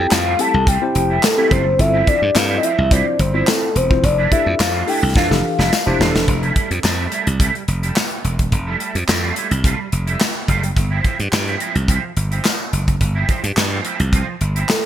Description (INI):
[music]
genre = early-eighties boogie funk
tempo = 107 BPM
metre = 4/4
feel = straight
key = F major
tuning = A4 = 442 Hz
[part]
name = soft octave-layered synth lead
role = melody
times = 0.0-6.0, 14.7-14.9 s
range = A4 to A5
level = -19 LUFS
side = left 2 dB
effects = chorus
[part]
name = mellow tine electric piano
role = accompaniment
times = 0.0-6.1 s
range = E3 to C5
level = -23 LUFS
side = left 3 dB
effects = medium stereo tremolo
[part]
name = electric guitar at the edge of break-up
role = riff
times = 0.0-14.7 s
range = F3 to F4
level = -24 LUFS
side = right 6 dB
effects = ensemble chorus
[part]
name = glassy slap bass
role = bass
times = 0.0-14.6 s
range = Eb1 to G2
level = -19 LUFS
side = right 1 dB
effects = none
[part]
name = modern studio drum kit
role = drums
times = 0.1-14.9 s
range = handclaps, hi-hat, kick drum, snare drum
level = -19 LUFS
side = equal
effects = none
[part]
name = tambourine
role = percussion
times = 0.1-14.8 s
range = none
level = -30 LUFS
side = left 7 dB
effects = none
[part]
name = mellow synth brass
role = second line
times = 5.2-6.2 s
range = E3 to A4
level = -25 LUFS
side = right 1 dB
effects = chorus, ping-pong delay
[sound]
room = light reverb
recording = bright 1980s-style digital production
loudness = -15 LUFS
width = side -10 dB against mid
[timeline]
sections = 0.0-6.3 A section; 6.3-14.9 B section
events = band accent 4.0-6.3; drum fill 5.2-6.3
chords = 0.0 Fmaj9; 1.8 G13sus4; 4.0 Fmaj13; 6.3 Fmaj9; 10.8 G7sus4